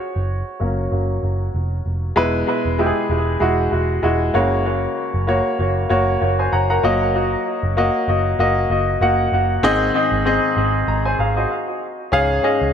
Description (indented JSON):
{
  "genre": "piano-driven pop",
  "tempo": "96 BPM",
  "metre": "4/4",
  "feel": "swing 56% on 16ths",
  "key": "unclear",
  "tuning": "A4 = 440 Hz",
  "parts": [
    { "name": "clear grand piano", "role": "accompaniment", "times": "0.0-12.7 s", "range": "Ab2 to Bb5", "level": "-18 LUFS", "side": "left 1 dB", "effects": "analog delay" },
    { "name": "vintage muted picked electric bass", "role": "bass", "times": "0.2-12.7 s", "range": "E1 to Db2", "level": "-21 LUFS", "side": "right 1 dB", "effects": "none" }
  ],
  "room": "moderate echo chamber reverb, RT60 2.1 s",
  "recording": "echo-heavy mix",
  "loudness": "-16 LUFS",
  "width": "side -8 dB against mid",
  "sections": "0.0-2.2 A section; 2.2-12.1 B section",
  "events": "grand piano solo 0.0-2.2; grand piano fill 6.2-7.1; stop 11.5-12.1",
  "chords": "0.0 Gb; 2.2 E; 4.3 Gb; 6.8 Ebm/Gb; 9.6 Ab; 12.1 Db"
}